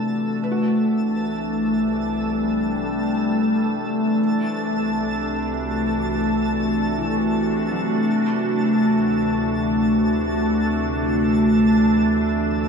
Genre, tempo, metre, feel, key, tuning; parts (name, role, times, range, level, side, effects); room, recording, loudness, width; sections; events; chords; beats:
ambient; free time; D mixolydian; A4 = 439 Hz
evolving wavetable pad; sustained chords; 0.0-12.7 s; C3 to F#4; -19 LUFS; equal; chorus, built-in reverb
felt-muted upright piano; arpeggios; 0.0-12.7 s; E3 to F#5; -35 LUFS; left 1 dB; ping-pong delay
deep rumbling drone; bass; 1.2-12.7 s; C2 to D2; -33 LUFS; right 1 dB; built-in reverb
twinkling granular texture; texture; 0.0-12.7 s; A4 to A5; -30 LUFS; right 1 dB; built-in reverb
wet concert hall reverb, RT60 2.1 s; cassette tape; -18 LUFS; side -5 dB against mid
0.0-12.7 A section
fade-in on felt piano 0.0-12.7; fade-in on synth drone 0.0-12.7; fade-in on synth texture 0.0-12.7; filter sweep on ambient pad 0.0-12.7
0.4 Am7/C; 4.2 Csus2; 8.1 D7
free time